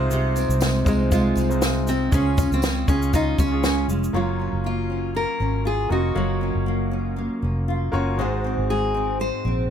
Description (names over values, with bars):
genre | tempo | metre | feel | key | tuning
acoustic pop | 119 BPM | 4/4 | swing 55% on 16ths | unclear | A4 = 439 Hz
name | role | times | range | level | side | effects
bright grand piano | accompaniment | 0.0-9.7 s | Gb3 to F5 | -30 LUFS | left 1 dB | plate reverb
nylon-string guitar | accompaniment | 0.0-9.7 s | Ab2 to Ab4 | -26 LUFS | right 1 dB | double-tracked left and right
vintage muted fingered electric bass | bass | 0.0-9.7 s | F1 to Db2 | -24 LUFS | equal | none
compact cocktail drum kit | drums | 0.1-4.1 s | kick drum, shaker, snare drum | -23 LUFS | equal | none
tambourine | percussion | 0.4-3.8 s | none | -42 LUFS | right 5 dB | none
fingerpicked steel-string acoustic guitar | melody | 0.9-9.7 s | Ab3 to C5 | -25 LUFS | equal | none
room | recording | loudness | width
light reverb | none | -20 LUFS | side -8 dB against mid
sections
0.0-4.1 A section; 4.1-9.7 B section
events
none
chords
0.0 Fm7/C; 2.1 Db; 4.1 Gbmaj7; 8.2 Ab7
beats
| 0.10 0.61 1.11 1.62 | 2.12 2.62 3.13 3.63 | 4.14 4.64 5.15 5.66 | 6.16 6.67 7.17 7.68 | 8.19 8.69 9.20